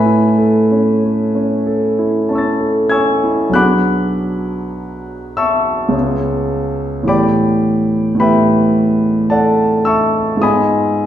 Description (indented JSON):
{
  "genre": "classical, impressionist solo piano",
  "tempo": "46-56 BPM",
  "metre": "3/4",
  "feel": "rubato",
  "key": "unclear",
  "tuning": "A4 = 439 Hz",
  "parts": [
    { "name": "warm grand piano", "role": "solo", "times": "0.0-11.1 s", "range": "B1 to A6", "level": "-12 LUFS", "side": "equal", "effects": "none" }
  ],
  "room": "wet recital hall reverb, RT60 1.4 s",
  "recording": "dark, warm production",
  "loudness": "-12 LUFS",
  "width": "side -11 dB against mid",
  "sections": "0.0-3.5 A section; 3.5-11.1 B section",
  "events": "none",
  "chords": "0.0 Aadd9; 3.5 Bm6; 5.9 C#m7; 7.1 A9sus4; 10.4 G#m6"
}